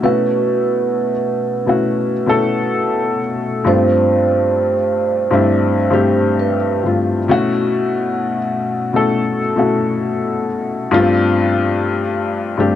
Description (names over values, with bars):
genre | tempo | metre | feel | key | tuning
hip hop | 66 BPM | 4/4 | swing 64% on 16ths | unclear | A4 = 439 Hz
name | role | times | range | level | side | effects
vibraphone with soft mallets | melody | 0.0-6.8 s | B4 to C5 | -18 LUFS | right 6 dB | low-pass filter, tape echo
dark upright piano | accompaniment | 0.0-12.8 s | G2 to A4 | -15 LUFS | left 3 dB | cassette tape, low-pass filter
room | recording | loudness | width
light reverb | none | -14 LUFS | side -11 dB against mid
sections
0.0-12.8 A section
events
none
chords
0.0 B9sus4; 3.7 G9sus4; 7.3 B9sus4; 10.9 G9sus4